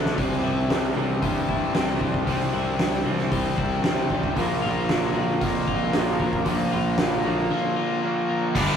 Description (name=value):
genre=quiet-loud alternative rock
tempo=115 BPM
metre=4/4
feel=straight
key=unclear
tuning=A4 = 440 Hz
part: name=twelve-string electric guitar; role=arpeggios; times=0.0-8.6 s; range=Bb2 to F4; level=-32 LUFS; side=left 4 dB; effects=none
part: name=biting overdriven guitar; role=riff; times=0.0-8.8 s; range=G2 to D4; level=-27 LUFS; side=left 4 dB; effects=none
part: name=crunchy overdriven guitar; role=riff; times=0.0-8.6 s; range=Bb2 to D4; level=-28 LUFS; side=right 5 dB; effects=none
part: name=fuzz picked electric bass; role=bass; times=0.0-8.7 s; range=G1 to G2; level=-29 LUFS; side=equal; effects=overdrive
part: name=oversized low-tuned drum kit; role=drums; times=0.1-8.7 s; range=crash cymbal, hi-hat, kick drum, snare drum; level=-26 LUFS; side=equal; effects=none
part: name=scooped high-gain guitar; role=riff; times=8.6-8.8 s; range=G2 to D4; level=-23 LUFS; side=equal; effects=distortion
room=light reverb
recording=rough rehearsal-room recording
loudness=-21 LUFS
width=side -8 dB against mid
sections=0.0-8.6 A section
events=drum fill 0.0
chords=0.2 C; 4.4 Bb